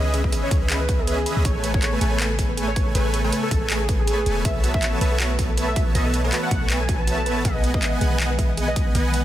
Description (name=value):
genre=future bass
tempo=160 BPM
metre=4/4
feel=swing 56% on 16ths, half-time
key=A lydian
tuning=A4 = 440 Hz
part: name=warm velvety synth lead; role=melody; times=0.0-8.8 s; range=G#4 to A5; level=-29 LUFS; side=equal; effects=chorus, sidechain pumping, digital delay
part: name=airy breathy pad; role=sustained chords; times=0.0-9.2 s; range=B2 to G#5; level=-33 LUFS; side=left 1 dB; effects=chorus, sidechain pumping
part: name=dense compressed supersaw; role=riff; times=0.0-9.2 s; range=A3 to A5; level=-26 LUFS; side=right 1 dB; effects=sidechain pumping
part: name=warm 808-style bass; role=bass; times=0.0-9.2 s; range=E1 to C#2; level=-24 LUFS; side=equal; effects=sidechain pumping
part: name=thumb-piano-like synth pluck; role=arpeggios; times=0.1-8.9 s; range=F#4 to B5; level=-32 LUFS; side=right 2 dB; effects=chorus, sidechain pumping, tape echo
part: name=trap drum kit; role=drums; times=0.1-9.2 s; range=handclaps, hi-hat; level=-28 LUFS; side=equal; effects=none
part: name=electronic kick drum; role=drums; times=0.2-8.8 s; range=none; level=-23 LUFS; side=equal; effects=none
room=digital ambience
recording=dense, heavily limited modern master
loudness=-19 LUFS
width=side -13 dB against mid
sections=0.0-9.2 A section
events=none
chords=0.0 C#m9; 1.4 Amaj9; 4.5 B7sus4; 7.5 Emaj7/B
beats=0.33 0.70 1.07 | 1.45 1.82 2.20 2.58 | 2.95 3.33 3.70 4.08 | 4.45 4.83 5.20 5.58 | 5.95 6.33 6.70 7.08 | 7.45 7.83 8.20 8.57 | 8.95